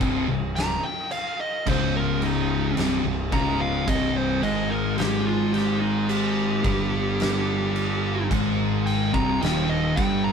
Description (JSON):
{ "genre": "stoner and doom metal", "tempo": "54 BPM", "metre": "4/4", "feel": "straight", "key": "C minor", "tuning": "A4 = 440 Hz", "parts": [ { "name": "thick fuzz guitar", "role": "riff", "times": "0.0-10.3 s", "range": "C2 to Ab3", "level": "-26 LUFS", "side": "left 6 dB", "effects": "distortion" }, { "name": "thick fuzz guitar", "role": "riff", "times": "0.0-10.3 s", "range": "C2 to Ab3", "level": "-27 LUFS", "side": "right 9 dB", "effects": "distortion" }, { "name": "fuzz picked electric bass", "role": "bass", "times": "0.0-10.3 s", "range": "C1 to Ab1", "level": "-30 LUFS", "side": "equal", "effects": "overdrive" }, { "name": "oversized low-tuned drum kit", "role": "drums", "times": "0.0-10.2 s", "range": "crash cymbal, kick drum, snare drum", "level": "-29 LUFS", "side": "right 1 dB", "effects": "none" }, { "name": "fuzz lead guitar", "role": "melody", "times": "0.6-10.3 s", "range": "Eb4 to Bb5", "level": "-28 LUFS", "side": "equal", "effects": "distortion" } ], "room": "moderate stone room reverb, RT60 1.1 s", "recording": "band playing live in one room", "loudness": "-21 LUFS", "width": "side -6 dB against mid", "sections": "0.0-10.3 A section", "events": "lead electric guitar solo 0.0-10.3", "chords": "0.0 Cm" }